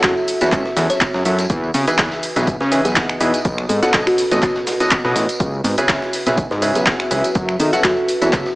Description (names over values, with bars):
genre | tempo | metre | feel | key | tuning
piano house | 123 BPM | 4/4 | swing 55% on 16ths | F# dorian | A4 = 437 Hz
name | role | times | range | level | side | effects
kalimba | melody | 0.0-8.5 s | F#4 to C#5 | -22 LUFS | equal | digital delay
clear baby grand piano | riff | 0.0-8.5 s | B2 to F#5 | -21 LUFS | equal | sidechain pumping
fat analog bass | bass | 0.0-8.4 s | A1 to D#3 | -20 LUFS | equal | sidechain pumping
dusty soul sampler-style drum kit | drums | 0.0-8.6 s | hi-hat, snare drum | -29 LUFS | equal | none
electronic kick drum | drums | 0.0-8.4 s | none | -24 LUFS | equal | none
punchy analog drum machine | drums | 0.0-8.4 s | finger snaps, handclaps, hi-hat, shaker | -21 LUFS | equal | overdrive
tambourine and congas | percussion | 0.0-8.5 s | none | -29 LUFS | right 1 dB | none
warbly tape-like pad | texture | 0.0-8.6 s | F#4 to E5 | -26 LUFS | equal | chorus, built-in reverb, phaser, sidechain pumping
room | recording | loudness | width
light reverb, digital ambience | small speaker sound | -15 LUFS | side -20 dB against mid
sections
0.0-8.6 A section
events
none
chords
0.0 F#m7; 1.5 Emaj7; 3.5 B9; 5.4 C#m7; 7.4 F#m7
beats
0.04 0.52 1.01 | 1.50 1.99 2.47 2.96 | 3.45 3.94 4.42 4.91 | 5.40 5.89 6.38 6.86 | 7.35 7.84 8.33